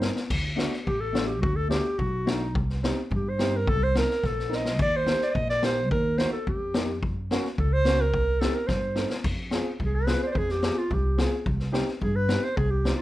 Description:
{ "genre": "klezmer", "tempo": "108 BPM", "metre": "2/4", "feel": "straight", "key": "C dorian sharp4, F minor from 9.2 s", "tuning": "A4 = 442 Hz", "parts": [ { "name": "warm clarinet", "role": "melody", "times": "0.0-13.0 s", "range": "Eb4 to Eb5", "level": "-27 LUFS", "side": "right 1 dB", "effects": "plate reverb" }, { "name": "dark upright piano", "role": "accompaniment", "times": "0.0-13.0 s", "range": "A3 to Bb4", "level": "-32 LUFS", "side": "equal", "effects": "none" }, { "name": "upright bass", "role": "bass", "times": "0.0-12.9 s", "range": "A1 to G2", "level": "-28 LUFS", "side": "equal", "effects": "none" }, { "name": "street-band drum kit", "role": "drums", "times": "0.0-13.0 s", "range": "crash cymbal, kick drum, snare drum", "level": "-29 LUFS", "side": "left 1 dB", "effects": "none" } ], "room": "light reverb", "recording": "dark, warm production", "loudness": "-23 LUFS", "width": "side -15 dB against mid", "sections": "0.3-9.2 A section; 9.2-13.0 B section", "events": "drum fill 4.5, 8.7-9.2", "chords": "0.3 D; 2.6 Cm; 4.8 Eb; 7.0 F#; 8.1 Cm; 9.2 Fm; 11.5 Cm" }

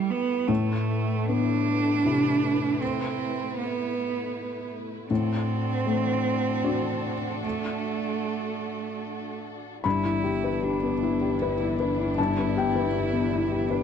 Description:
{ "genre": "neoclassical piano and strings", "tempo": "78 BPM", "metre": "3/4", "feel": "rubato", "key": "G major", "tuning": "A4 = 438 Hz", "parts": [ { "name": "rich cello", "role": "second line", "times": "0.0-13.8 s", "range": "G3 to E4", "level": "-28 LUFS", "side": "right 4 dB", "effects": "none" }, { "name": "felt-muted upright piano", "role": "accompaniment", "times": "0.0-13.8 s", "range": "G2 to B5", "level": "-27 LUFS", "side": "left 4 dB", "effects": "none" }, { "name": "rich chamber string section", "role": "sustained chords", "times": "0.0-13.8 s", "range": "G3 to B4", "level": "-36 LUFS", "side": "left 2 dB", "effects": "none" }, { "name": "warm double bass", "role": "bass", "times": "9.9-13.8 s", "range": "G1", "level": "-32 LUFS", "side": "left 2 dB", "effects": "none" } ], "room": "light reverb", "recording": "dark, warm production", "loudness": "-24 LUFS", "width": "side -7 dB against mid", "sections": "0.0-9.8 A section; 9.8-13.8 A section", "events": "none", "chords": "0.5 Amadd9; 5.1 D7/A; 9.8 G6" }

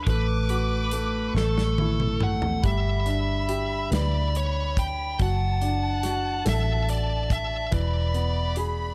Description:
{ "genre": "six-eight pop ballad", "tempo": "47 BPM (dotted quarters)", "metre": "6/8", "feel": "straight", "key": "D major", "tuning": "A4 = 441 Hz", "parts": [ { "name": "warm studio violin section", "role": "second line", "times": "0.0-8.9 s", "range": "A5 to D6", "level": "-38 LUFS", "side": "equal", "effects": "none" }, { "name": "clear upright piano", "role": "accompaniment", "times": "0.0-8.9 s", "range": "E3 to B4", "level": "-34 LUFS", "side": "equal", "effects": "none" }, { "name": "vintage muted fingered electric bass", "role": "bass", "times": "0.0-8.9 s", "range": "E1 to D2", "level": "-28 LUFS", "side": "equal", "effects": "none" }, { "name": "high-gain lead guitar", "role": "melody", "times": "0.1-8.5 s", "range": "A4 to G5", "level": "-32 LUFS", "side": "equal", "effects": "distortion, delay" }, { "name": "modern studio drum kit", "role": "drums", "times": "0.1-8.8 s", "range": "hi-hat, kick drum, snare drum, toms", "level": "-30 LUFS", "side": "equal", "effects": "none" } ], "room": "little or no reverb", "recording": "dark, warm production", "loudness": "-25 LUFS", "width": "mono", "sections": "0.0-8.9 A section", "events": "drum fill 1.4-2.6", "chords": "0.1 D/A; 1.4 A; 2.6 G; 5.2 D/F#; 7.7 E" }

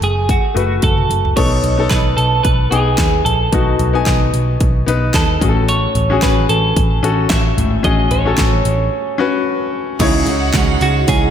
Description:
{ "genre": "piano-driven pop", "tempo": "111 BPM", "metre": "4/4", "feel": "swing 56% on 16ths", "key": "unclear", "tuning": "A4 = 440 Hz", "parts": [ { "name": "twelve-string electric guitar", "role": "melody", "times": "0.0-11.3 s", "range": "F#4 to E5", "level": "-19 LUFS", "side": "right 2 dB", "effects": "spring reverb, ping-pong delay" }, { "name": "bright grand piano", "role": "accompaniment", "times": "0.0-11.3 s", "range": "A2 to G#5", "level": "-19 LUFS", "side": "left 6 dB", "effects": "none" }, { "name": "vintage muted picked electric bass", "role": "bass", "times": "0.0-11.3 s", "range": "F#1 to D#2", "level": "-17 LUFS", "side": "equal", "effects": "none" }, { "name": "pop drum kit", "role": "drums", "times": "0.0-11.2 s", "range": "crash cymbal, handclaps, hi-hat, kick drum, snare drum, toms", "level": "-18 LUFS", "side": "right 1 dB", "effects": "none" }, { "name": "rich studio violin section", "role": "second line", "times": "10.0-11.3 s", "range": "F#4 to F#5", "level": "-22 LUFS", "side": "right 2 dB", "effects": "none" }, { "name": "picked steel-string acoustic guitar", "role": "riff", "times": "10.0-11.3 s", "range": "C#3 to G#4", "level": "-19 LUFS", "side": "right 12 dB", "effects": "none" } ], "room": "moderate plate reverb, RT60 2.0 s", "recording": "dreamy mix soaked in reverb", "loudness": "-12 LUFS", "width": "side -9 dB against mid", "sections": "0.0-1.4 A section; 1.4-10.0 B section; 10.0-11.3 C section", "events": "drum fill 0.8-1.4; break 8.9-10.0", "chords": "0.0 F#madd9; 1.4 B7; 5.4 A6; 10.0 C#madd9" }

